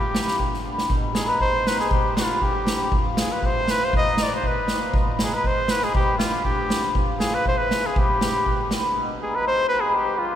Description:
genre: klezmer.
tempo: 119 BPM.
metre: 2/4.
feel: straight.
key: unclear.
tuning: A4 = 441 Hz.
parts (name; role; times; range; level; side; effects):
clear cornet; melody; 0.0-10.4 s; F4 to Eb5; -24 LUFS; equal; none.
cimbalom; accompaniment; 0.0-10.4 s; Bb2 to Ab4; -25 LUFS; left 2 dB; none.
street-band drum kit; drums; 0.1-8.8 s; kick drum, snare drum; -24 LUFS; right 1 dB; none.
room: wet cathedral reverb, RT60 6.2 s.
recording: recorded in a church or concert hall.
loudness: -20 LUFS.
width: side -10 dB against mid.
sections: 0.9-9.0 A section; 9.0-10.4 A section.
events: drum fill 0.7.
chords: 0.0 G; 0.9 B; 1.9 G; 2.9 Fm; 3.9 Eb; 4.9 B; 5.9 G; 7.0 Fm; 8.0 G; 9.0 B.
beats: 0.40 | 0.91 1.41 | 1.92 2.42 | 2.92 3.43 | 3.93 4.43 | 4.94 5.44 | 5.95 6.45 | 6.95 7.46 | 7.96 8.47 | 8.97 9.47 | 9.98.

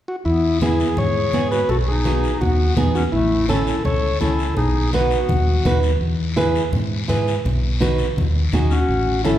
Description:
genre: latin, cumbia.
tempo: 167 BPM.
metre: 4/4.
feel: straight.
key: E major.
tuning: A4 = 439 Hz.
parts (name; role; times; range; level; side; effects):
combo organ; melody; 0.1-5.8, 8.7-9.4 s; E4 to C#5; -22 LUFS; left 1 dB; none.
breathy clarinet; second line; 0.3-5.8, 8.7-9.4 s; A3 to A4; -26 LUFS; left 2 dB; none.
fingered electric bass; bass; 0.3-9.4 s; A1 to G#2; -21 LUFS; equal; none.
guiro; percussion; 0.3-9.4 s; none; -32 LUFS; left 4 dB; none.
flamenco guitar; accompaniment; 0.6-9.4 s; B3 to B4; -23 LUFS; right 3 dB; none.
congas; percussion; 0.6-9.4 s; none; -25 LUFS; left 1 dB; none.
room: wet recital hall reverb, RT60 1.7 s.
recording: recorded in a church or concert hall.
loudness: -17 LUFS.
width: side -12 dB against mid.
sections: 0.3-9.4 A section.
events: none.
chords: 0.3 E; 1.7 B; 3.1 A; 4.6 B; 6.0 E; 7.4 B.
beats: | 0.25 0.61 0.97 1.33 | 1.69 2.05 2.41 2.77 | 3.13 3.49 3.85 4.21 | 4.57 4.93 5.29 5.65 | 6.01 6.37 6.73 7.09 | 7.45 7.81 8.17 8.53 | 8.89 9.25.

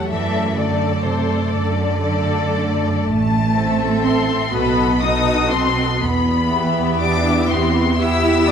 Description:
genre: classical, slow romantic movement for string orchestra.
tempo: 37-44 BPM (dotted quarters).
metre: 6/8.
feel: rubato.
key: E minor from 3.1 s.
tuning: A4 = 441 Hz.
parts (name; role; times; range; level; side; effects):
warm symphonic violin section; melody; 0.0-8.5 s; C5 to E6; -22 LUFS; left 6 dB; none.
rich symphonic violin section; second line; 0.0-8.5 s; G4 to E5; -25 LUFS; left 4 dB; none.
rich symphonic viola section; accompaniment; 0.0-8.5 s; A3 to A4; -23 LUFS; equal; none.
warm symphonic cello section; bass; 0.0-8.5 s; C3 to E4; -21 LUFS; right 2 dB; none.
warm symphonic double bass section; bass; 0.1-8.5 s; A1 to F#2; -21 LUFS; right 4 dB; none.
room: moderate concert hall reverb, RT60 2.3 s.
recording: dark, warm production.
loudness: -16 LUFS.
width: side -7 dB against mid.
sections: 0.0-8.5 A section.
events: none.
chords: 0.1 D/F#; 3.1 Am; 4.5 B7; 6.0 Em.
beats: | 0.11 1.51 | 3.06 4.53 | 6.00 7.48.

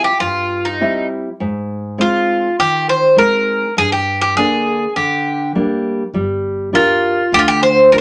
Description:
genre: greek folk.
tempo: 101 BPM.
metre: 4/4.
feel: straight.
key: G phrygian.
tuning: A4 = 440 Hz.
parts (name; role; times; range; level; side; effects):
Greek bouzouki; melody; 0.0-8.0 s; Eb4 to C5; -15 LUFS; equal; none.
nylon-string guitar; accompaniment; 0.0-8.0 s; G2 to Bb4; -22 LUFS; equal; none.
upright bass; bass; 6.1-8.0 s; G1 to D2; -27 LUFS; equal; none.
room: moderate studio reverb, RT60 0.6 s.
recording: none.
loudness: -16 LUFS.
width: mono.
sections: 0.0-6.1 A section; 6.1-8.0 A section.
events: none.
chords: 0.0 C; 1.4 Ab; 3.8 Gm.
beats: 0.20 0.79 | 1.39 1.99 2.58 3.18 | 3.77 4.37 4.96 5.55 | 6.14 6.73 7.33 7.92.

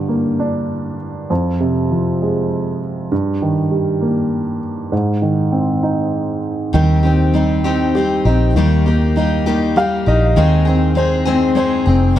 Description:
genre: six-eight pop ballad.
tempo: 66 BPM (dotted quarters).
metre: 6/8.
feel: straight.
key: unclear.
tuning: A4 = 440 Hz.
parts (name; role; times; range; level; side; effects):
warm baby grand piano; accompaniment; 0.0-12.2 s; F2 to F5; -16 LUFS; right 1 dB; none.
picked steel-string acoustic guitar; arpeggios; 6.7-12.2 s; Eb3 to Ab4; -19 LUFS; left 6 dB; slapback echo.
vintage muted fingered electric bass; bass; 6.7-12.2 s; F1 to Eb2; -16 LUFS; equal; none.
room: moderate plate reverb, RT60 3.5 s.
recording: none.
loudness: -14 LUFS.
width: side -12 dB against mid.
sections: 0.0-6.7 A section; 6.7-12.2 B section.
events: grand piano fill 9.5-10.4.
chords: 0.0 Gm; 1.3 Fm; 3.1 Eb/G; 4.9 Ab; 6.7 Cm/Eb; 8.6 Eb; 10.4 Ab/Eb.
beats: 0.39 | 1.30 2.21 | 3.11 4.02 | 4.92 5.83 | 6.74 7.65 | 8.56 9.47 | 10.37 11.27 | 12.17.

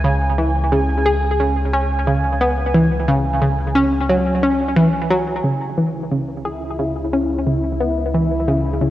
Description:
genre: ambient, sequencer-driven space music.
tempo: 89 BPM.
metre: 4/4.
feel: straight.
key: C# minor.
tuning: A4 = 437 Hz.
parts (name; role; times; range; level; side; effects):
analog pluck; riff; 0.0-8.9 s; C#3 to G#4; -18 LUFS; equal; chorus, tape echo.
warm sub bass; bass; 0.0-8.9 s; C#2; -22 LUFS; equal; tube saturation.
bubbling stepped-filter texture; texture; 0.0-8.9 s; E4 to G#5; -24 LUFS; right 1 dB; chorus, built-in reverb.
room: wet plate reverb, RT60 2.8 s.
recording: worn, warbling old tape, cassette tape, warbly pitch drift.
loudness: -16 LUFS.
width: side -14 dB against mid.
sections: 0.0-5.4 A section; 5.4-8.9 B section.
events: none.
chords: 0.0 C#m.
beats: | 0.05 0.72 1.40 2.07 | 2.74 3.42 4.09 4.77 | 5.44 6.12 6.79 7.46 | 8.14 8.81.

